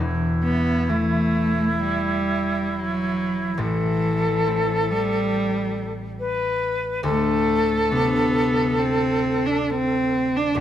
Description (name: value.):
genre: celtic folk, Celtic slow air.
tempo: 68 BPM.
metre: 4/4.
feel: rubato.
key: unclear.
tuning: A4 = 441 Hz.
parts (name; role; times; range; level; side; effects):
wooden flute; second line; 0.0-10.6 s; E4 to B4; -24 LUFS; left 1 dB; none.
concert harp; accompaniment; 0.0-10.6 s; D1 to G5; -26 LUFS; left 1 dB; none.
dark cello; melody; 0.4-10.6 s; E3 to D4; -23 LUFS; right 1 dB; none.
room: light reverb.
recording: close, detailed microphones.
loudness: -20 LUFS.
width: side -11 dB against mid.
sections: 0.0-10.6 A section.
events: none.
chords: 0.0 Em; 3.6 Am; 7.0 D7.